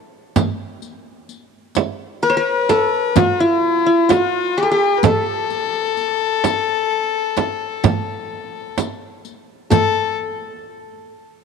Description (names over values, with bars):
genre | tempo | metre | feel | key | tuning
Arabic maqam ensemble | 128 BPM (eighths) | 10/8 | straight | A maqam huzam | A4 = 440 Hz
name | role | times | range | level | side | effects
frame drum | percussion | 0.4-10.1 s | none | -18 LUFS | right 8 dB | none
riq | percussion | 0.4-10.1 s | none | -26 LUFS | left 12 dB | none
qanun | melody | 2.2-10.1 s | E4+40c to C5+50c | -17 LUFS | equal | none
rich violin | second line | 2.2-10.1 s | E4+39c to B4-50c | -20 LUFS | left 9 dB | none
room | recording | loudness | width
moderate plate reverb, RT60 3.6 s | 1960s-style stereo with parts hard left and right | -16 LUFS | side -5 dB against mid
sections
0.0-9.7 A section; 9.7-11.4 B section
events
none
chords
none